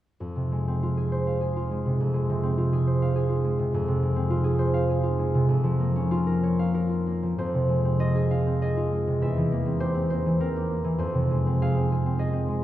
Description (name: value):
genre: classical, solo harp piece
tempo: 89-109 BPM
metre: 3/4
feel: rubato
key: F minor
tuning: A4 = 440 Hz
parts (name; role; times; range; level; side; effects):
- concert harp; solo; 0.2-12.6 s; E2 to F5; -22 LUFS; equal; none
room: wet church reverb, RT60 3.5 s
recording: recorded in a church or concert hall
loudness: -22 LUFS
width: side -13 dB against mid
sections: 0.2-7.4 A section; 7.4-12.6 B section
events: none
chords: 0.2 Fm; 5.5 Bbm/F; 7.4 Fm; 9.2 C7/E; 11.0 Fm